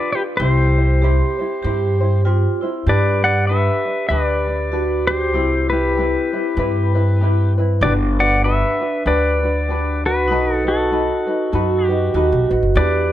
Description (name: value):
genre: Hawaiian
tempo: 97 BPM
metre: 4/4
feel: swing 58% on 8ths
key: G major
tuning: A4 = 441 Hz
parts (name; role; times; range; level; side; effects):
- pedal steel guitar; melody; 0.0-13.1 s; F#4 to F#5; -20 LUFS; left 1 dB; none
- vibraphone with medium hard mallets; second line; 0.0-13.1 s; D4 to G4; -23 LUFS; right 2 dB; none
- tenor ukulele; accompaniment; 0.0-13.1 s; C4 to C5; -25 LUFS; left 2 dB; none
- upright bass; bass; 0.4-13.1 s; F#1 to G2; -18 LUFS; equal; none
room: light reverb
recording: dark, warm production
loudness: -15 LUFS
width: side -12 dB against mid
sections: 0.0-2.9 A section; 2.9-13.1 B section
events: none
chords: 0.4 C; 2.9 Gmaj7; 5.3 Cmaj7; 7.8 Gmaj7; 10.3 B7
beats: | 0.39 1.01 1.63 2.25 | 2.87 3.49 4.11 4.73 | 5.35 5.97 6.59 7.20 | 7.82 8.44 9.06 9.68 | 10.29 10.91 11.53 12.15 | 12.77